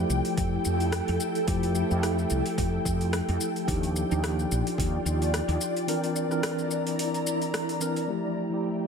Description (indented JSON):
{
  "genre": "sunset chillout",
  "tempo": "109 BPM",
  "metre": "4/4",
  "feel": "swing 55% on 16ths",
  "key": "F major",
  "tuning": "A4 = 439 Hz",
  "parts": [
    { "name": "mellow tine electric piano", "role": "accompaniment", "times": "0.0-8.9 s", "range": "E3 to Bb4", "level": "-30 LUFS", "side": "equal", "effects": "medium stereo tremolo, auto-pan, ping-pong delay" },
    { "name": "ethereal airy pad", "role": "sustained chords", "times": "0.0-8.9 s", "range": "F3 to Bb5", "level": "-30 LUFS", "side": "equal", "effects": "ensemble chorus, built-in reverb, tremolo" },
    { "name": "woody fretless electric bass", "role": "bass", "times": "0.0-5.6 s", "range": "Bb1 to F2", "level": "-28 LUFS", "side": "equal", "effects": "ensemble chorus" },
    { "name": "deep house drum kit", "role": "drums", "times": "0.1-8.1 s", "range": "hi-hat, rim click, shaker", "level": "-34 LUFS", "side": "left 1 dB", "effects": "overdrive" },
    { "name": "electronic kick drum", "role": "drums", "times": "0.4-4.9 s", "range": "none", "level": "-31 LUFS", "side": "equal", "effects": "overdrive" }
  ],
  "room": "moderate scoring stage reverb, RT60 1.8 s",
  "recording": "none",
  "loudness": "-25 LUFS",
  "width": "side -6 dB against mid",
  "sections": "0.0-8.1 A section",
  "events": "none",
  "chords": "0.0 Fmaj9; 3.7 Ebmaj9; 5.9 C9; 8.1 Fmaj9"
}